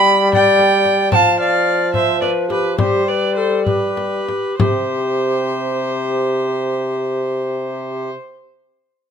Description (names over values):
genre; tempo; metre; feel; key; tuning
classical, renaissance-style consort dance; 63-76 BPM (dotted quarters); 6/8; straight; unclear; A4 = 440 Hz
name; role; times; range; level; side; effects
mellow alto recorder; melody; 0.0-8.1 s; G4 to G5; -20 LUFS; left 4 dB; none
warm viola; second line; 0.0-8.1 s; B4 to B5; -19 LUFS; right 4 dB; none
mellow bassoon; bass; 0.0-8.1 s; C3 to G3; -20 LUFS; equal; none
frame drum; percussion; 0.3-4.9 s; none; -20 LUFS; left 2 dB; none
room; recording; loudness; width
moderate stone room reverb, RT60 1.0 s; minimal, uncompressed stereo recording; -15 LUFS; side -7 dB against mid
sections
0.0-4.6 A section; 4.6-8.4 B section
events
slowing down 0.3-4.6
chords
0.0 G; 1.1 F5; 2.8 G; 4.6 C5